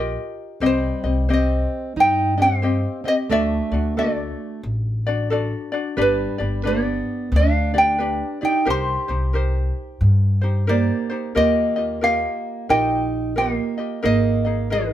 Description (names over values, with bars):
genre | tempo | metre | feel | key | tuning
Hawaiian | 89 BPM | 4/4 | swing 63% on 8ths | C minor, Eb major from 11.4 s | A4 = 441 Hz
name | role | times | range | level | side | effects
ukulele | accompaniment | 0.0-14.9 s | C4 to Eb5 | -25 LUFS | left 3 dB | none
upright bass | bass | 0.0-14.9 s | G1 to G2 | -22 LUFS | equal | none
fingerpicked plugged-in steel-string acoustic guitar | second line | 0.6-14.9 s | Eb3 to G4 | -26 LUFS | right 5 dB | none
ukulele | melody | 0.7-14.9 s | Bb4 to C6 | -21 LUFS | equal | none
room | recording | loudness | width
light reverb | band playing live in one room | -18 LUFS | side -12 dB against mid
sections
0.6-11.4 A section; 11.4-14.9 B section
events
none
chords
0.0 Ebadd9; 0.6 Cm; 3.3 D; 6.0 G; 8.7 Cm7; 11.4 Ebadd9; 14.0 Absus2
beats
| 0.62 1.29 1.96 2.63 | 3.30 3.97 4.64 5.31 | 5.99 6.66 7.33 8.00 | 8.67 9.34 10.01 10.68 | 11.35 12.03 12.70 13.37 | 14.04 14.71